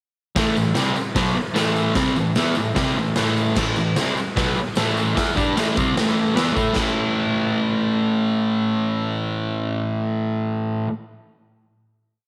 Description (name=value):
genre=garage rock duo or trio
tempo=151 BPM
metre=4/4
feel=straight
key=A minor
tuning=A4 = 440 Hz
part: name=fuzz guitar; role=riff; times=0.4-10.9 s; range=A2 to A4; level=-22 LUFS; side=equal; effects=distortion
part: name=raw garage drum kit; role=drums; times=0.4-6.9 s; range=crash cymbal, hi-hat, kick drum, snare drum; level=-27 LUFS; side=equal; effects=none
part: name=tambourine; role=percussion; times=0.4-6.9 s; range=none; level=-43 LUFS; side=equal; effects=none
room=light reverb, small room ambience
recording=none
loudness=-21 LUFS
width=mono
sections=0.4-6.8 riff; 6.8-9.9 final chord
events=none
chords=0.4 Am; 6.8 A5